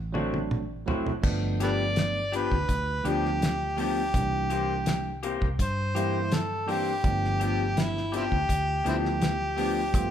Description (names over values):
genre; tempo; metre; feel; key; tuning
straight-eighth soul blues; 83 BPM; 4/4; straight; G mixolydian; A4 = 440 Hz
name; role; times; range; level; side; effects
vintage muted fingered electric bass; bass; 0.0-10.1 s; G1 to G2; -32 LUFS; equal; none
bell-like tine electric piano; accompaniment; 0.1-10.1 s; E3 to F4; -33 LUFS; right 5 dB; none
electric guitar through a small old amp; stabs; 0.1-9.8 s; E3 to G4; -32 LUFS; left 6 dB; none
damped 70s drum kit; drums; 0.1-10.1 s; crash cymbal, hi-hat, kick drum, snare drum, toms; -30 LUFS; equal; none
warm harmonica; melody; 1.6-10.1 s; C4 to D5; -29 LUFS; equal; overdrive
room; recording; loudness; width
moderate large studio reverb, RT60 1.2 s; band playing live in one room; -25 LUFS; side -9 dB against mid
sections
0.0-1.2 A section; 1.2-10.1 B section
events
drum fill 0.0-1.2; harmonica solo 1.2-10.1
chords
0.0 D7; 1.2 G7; 4.1 C7; 7.0 G7